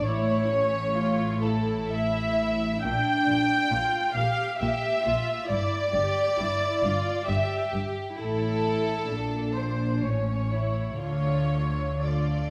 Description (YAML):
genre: classical, slow romantic movement for string orchestra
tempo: 66 BPM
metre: 3/4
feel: uneven beats, rubato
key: unclear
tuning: A4 = 441 Hz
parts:
  - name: clear studio violin section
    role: melody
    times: 0.0-12.5 s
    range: A4 to G5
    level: -36 LUFS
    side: equal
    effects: none
  - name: rich studio violin section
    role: second line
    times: 0.0-12.5 s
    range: C#4 to G4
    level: -35 LUFS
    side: equal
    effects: none
  - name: dark studio viola section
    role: accompaniment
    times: 0.0-12.5 s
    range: A4 to G5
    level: -30 LUFS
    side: equal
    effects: none
  - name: dark studio double bass section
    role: bass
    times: 0.0-12.5 s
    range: G1 to D2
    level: -34 LUFS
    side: equal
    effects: none
  - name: warm studio cello section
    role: bass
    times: 0.0-12.5 s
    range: G2 to D3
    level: -33 LUFS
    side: equal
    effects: none
room: moderate scoring stage reverb, RT60 1.6 s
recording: none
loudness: -26 LUFS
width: mono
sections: 0.0-12.5 A section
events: none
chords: 0.1 A; 2.8 Bb6; 5.5 Em7/G; 8.2 A5; 9.1 Bbmaj9; 10.0 A; 11.0 Dm